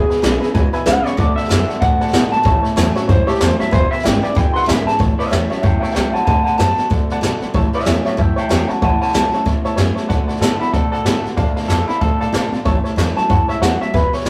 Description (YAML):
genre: rockabilly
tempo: 188 BPM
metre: 4/4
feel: swing 60% on 8ths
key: A major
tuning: A4 = 440 Hz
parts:
  - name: electric guitar through a small old amp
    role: melody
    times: 0.0-14.3 s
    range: E4 to C6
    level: -21 LUFS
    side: equal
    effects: none
  - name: clear upright piano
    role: accompaniment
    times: 0.0-14.3 s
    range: B4 to A5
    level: -28 LUFS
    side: equal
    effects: none
  - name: picked steel-string acoustic guitar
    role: accompaniment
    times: 0.0-14.3 s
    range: E2 to F#4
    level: -31 LUFS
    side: equal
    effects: none
  - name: electric guitar through a small old amp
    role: riff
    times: 0.0-14.3 s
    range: E2 to B3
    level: -26 LUFS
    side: equal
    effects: none
  - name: upright bass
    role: bass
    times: 0.0-14.3 s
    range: E1 to C3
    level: -23 LUFS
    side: equal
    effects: none
  - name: jazz brush drum kit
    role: drums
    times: 0.1-14.3 s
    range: hi-hat, kick drum, snare drum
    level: -20 LUFS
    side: equal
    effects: none
room: moderate stone room reverb, RT60 0.9 s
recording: rough rehearsal-room recording, tube saturation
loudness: -16 LUFS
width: mono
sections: 0.0-5.0 A section; 5.0-14.3 B section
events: clean electric guitar solo 0.0-5.0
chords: 0.0 E6; 1.2 D6; 2.5 A6; 3.7 E6; 5.0 A6; 6.3 D6; 7.5 A6; 10.1 D6; 11.4 Dm7; 12.7 A6